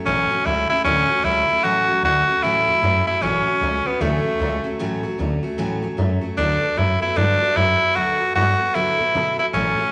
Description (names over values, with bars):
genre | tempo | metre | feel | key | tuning
rockabilly | 152 BPM | 4/4 | swing 62% on 8ths | A major | A4 = 442 Hz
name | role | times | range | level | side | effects
picked steel-string acoustic guitar | accompaniment | 0.0-9.9 s | A2 to A4 | -29 LUFS | equal | none
raspy tenor saxophone | melody | 0.1-9.9 s | A3 to F#4 | -20 LUFS | equal | none
upright bass | bass | 0.1-9.8 s | A1 to B2 | -27 LUFS | equal | none
room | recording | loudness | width
wet large studio reverb, RT60 1.3 s | none | -20 LUFS | mono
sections
0.1-9.9 A section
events
none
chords
0.1 A6; 6.4 D6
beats
| 0.06 0.45 0.85 1.24 | 1.64 2.03 2.43 2.82 | 3.22 3.61 4.01 4.40 | 4.80 5.19 5.59 5.98 | 6.38 6.77 7.17 7.56 | 7.96 8.35 8.75 9.14 | 9.54